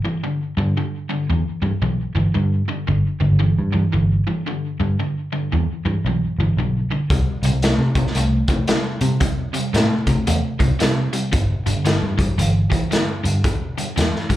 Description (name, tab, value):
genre	blues rock power trio and southern rock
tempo	114 BPM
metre	4/4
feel	swing 62% on 8ths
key	unclear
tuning	A4 = 440 Hz
part	crunchy overdriven guitar	riff	0.0-14.4 s	G2 to A3	-23 LUFS	equal	none
part	vintage muted picked electric bass	bass	0.6-14.4 s	G1 to C3	-19 LUFS	equal	none
part	raw garage drum kit	drums	7.1-14.4 s	hi-hat, kick drum, snare drum	-20 LUFS	equal	none
room	little or no reverb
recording	live gig heard through the venue's PA, club ambience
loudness	-17 LUFS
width	side -14 dB against mid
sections	0.0-14.4 A section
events	none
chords	0.0 G5; 7.1 C5; 11.3 G5